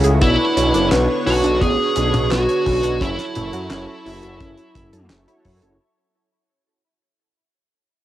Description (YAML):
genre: synthwave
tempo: 86 BPM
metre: 4/4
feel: straight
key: unclear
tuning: A4 = 439 Hz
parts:
  - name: lush unison pad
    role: sustained chords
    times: 0.0-5.8 s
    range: C#3 to C#5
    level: -26 LUFS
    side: left 1 dB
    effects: chorus, sidechain pumping, cassette tape, plate reverb
  - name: analog pluck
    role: arpeggios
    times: 0.0-5.7 s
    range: B3 to C#5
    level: -26 LUFS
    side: equal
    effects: chorus, phaser, cassette tape, tape echo, plate reverb
  - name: mellow synth brass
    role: stabs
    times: 0.0-5.8 s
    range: C#4 to C#5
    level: -28 LUFS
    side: right 3 dB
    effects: chorus, cassette tape, tape echo, plate reverb
  - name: dark detuned saw bass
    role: bass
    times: 0.0-5.8 s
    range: F#1 to F#2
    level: -20 LUFS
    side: equal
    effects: tube saturation
  - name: damped 70s drum kit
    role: drums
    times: 0.0-5.8 s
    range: handclaps, hi-hat, snare drum, toms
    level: -26 LUFS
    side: equal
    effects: small room ambience, cassette tape
  - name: dark smooth lead guitar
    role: melody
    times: 0.2-5.1 s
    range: E4 to G#4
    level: -20 LUFS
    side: right 1 dB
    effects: overdrive, cassette tape, analog delay, plate reverb
  - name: kick drum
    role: drums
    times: 0.2-5.6 s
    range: none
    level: -20 LUFS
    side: equal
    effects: small room ambience, cassette tape
room: moderate booth ambience, RT60 0.2 s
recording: home recording on cassette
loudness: -15 LUFS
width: side -13 dB against mid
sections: 0.0-5.8 A section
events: fade-out 0.0-5.8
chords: 0.2 Bmadd9; 3.0 F#m7